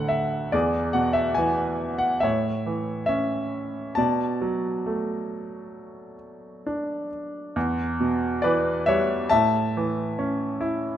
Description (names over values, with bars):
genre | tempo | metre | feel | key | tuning
classical, lyrical solo piano | 68 BPM | 4/4 | rubato | B dorian, E dorian from 7.6 s | A4 = 441 Hz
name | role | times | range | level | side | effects
bright grand piano | solo | 0.0-11.0 s | D2 to A5 | -23 LUFS | equal | none
room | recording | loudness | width
moderate recital hall reverb, RT60 1.4 s | none | -22 LUFS | side -10 dB against mid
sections
0.0-7.6 A section; 7.6-11.0 B section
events
none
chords
0.0 D5; 0.5 E; 2.2 A; 4.0 Bm7; 7.6 Em; 9.3 A